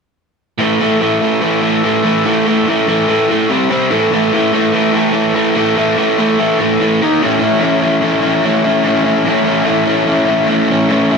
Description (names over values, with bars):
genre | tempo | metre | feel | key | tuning
rock | 145 BPM | 4/4 | straight | A major | A4 = 440 Hz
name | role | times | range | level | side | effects
biting overdriven guitar | riff | 0.6-11.2 s | A2 to E4 | -11 LUFS | equal | none
room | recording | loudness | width
wet stone room reverb, RT60 1.3 s, digital ambience | none | -11 LUFS | side -5 dB against mid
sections
0.6-7.2 A section; 7.2-11.2 B section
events
none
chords
0.6 A5; 3.5 C5; 3.9 A5; 7.0 D#5; 7.2 A